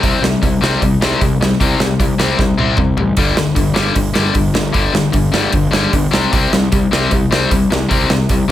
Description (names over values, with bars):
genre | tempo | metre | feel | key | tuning
punk rock | 152 BPM | 4/4 | straight | unclear | A4 = 441 Hz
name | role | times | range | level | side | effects
overdriven electric guitar | riff | 0.0-8.5 s | G2 to C4 | -15 LUFS | left 4 dB | none
fuzz picked electric bass | bass | 0.0-8.5 s | G1 to C2 | -19 LUFS | right 1 dB | overdrive
big rock drum kit | drums | 0.0-8.4 s | hi-hat, kick drum, snare drum, splash cymbal, toms | -17 LUFS | right 2 dB | none
room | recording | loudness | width
light reverb | none | -12 LUFS | side -12 dB against mid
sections
0.0-8.5 A section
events
drum fill 2.4-3.2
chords
0.0 C5; 3.2 G5; 6.1 C5